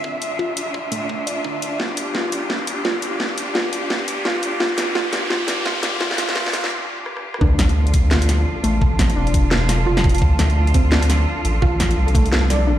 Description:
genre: half-time drum and bass.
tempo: 171 BPM.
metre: 4/4.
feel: swing 60% on 16ths, half-time.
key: D minor.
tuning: A4 = 440 Hz.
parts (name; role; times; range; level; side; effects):
rich studio cello section; sustained chords; 0.0-12.8 s; F3 to E5; -26 LUFS; equal; sidechain pumping, low-pass filter.
warbly dusty pluck; arpeggios; 0.0-12.8 s; A3 to D5; -26 LUFS; equal; chorus, ping-pong delay.
electronic kick drum; drums; 0.0-12.2 s; none; -19 LUFS; equal; high-pass filter on kick, high-pass filter on room.
riser and impact; sound effects; 0.0-8.8 s; none; -28 LUFS; equal; none.
drum and bass drum kit; drums; 0.2-12.6 s; hi-hat, rim click, snare drum; -23 LUFS; equal; none.
saturated sub bass; bass; 7.4-12.8 s; E1 to D2; -18 LUFS; equal; none.
pulsing gated texture; texture; 7.4-12.8 s; A4 to A5; -31 LUFS; right 3 dB; chorus, built-in reverb.
room: light reverb, digital ambience.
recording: played on a big sound system in a bare room, large studio reverb, high-pass filter.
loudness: -17 LUFS.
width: side -12 dB against mid.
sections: 0.0-7.4 A section; 7.4-12.8 B section.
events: build-up 0.0-7.4; riser 0.0-6.7; filter sweep on synth pluck 0.0-7.4; drum fill 1.8-6.7, 7.1-7.4; break 6.7-7.4; drop 7.4-12.8; impact 7.4-8.8.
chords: 0.0 Dmadd9.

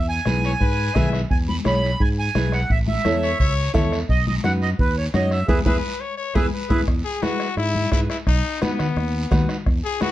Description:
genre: latin, cumbia.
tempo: 172 BPM.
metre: 4/4.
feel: straight.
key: E major.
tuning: A4 = 440 Hz.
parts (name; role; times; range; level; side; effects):
accordion; melody; 0.0-6.8 s; G#4 to B5; -26 LUFS; right 4 dB; none.
fingered electric bass; bass; 0.0-9.8 s; A1 to G#2; -23 LUFS; equal; none.
flamenco guitar; accompaniment; 0.3-10.1 s; D#4 to E5; -25 LUFS; right 2 dB; none.
bombo; percussion; 0.3-10.1 s; none; -22 LUFS; equal; none.
congas; percussion; 0.3-10.1 s; none; -27 LUFS; left 3 dB; none.
guiro; percussion; 0.3-10.1 s; none; -37 LUFS; right 3 dB; none.
growling trumpet; second line; 0.5-10.1 s; B3 to E5; -26 LUFS; left 5 dB; none.
room: light reverb.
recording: dark, warm production.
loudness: -18 LUFS.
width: side -14 dB against mid.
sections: 0.0-6.9 A section; 6.9-10.1 B section.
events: band accent 5.5-6.9; trumpet solo 6.9-10.1.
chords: 0.0 E; 2.7 A; 4.1 B; 5.5 E; 8.3 B.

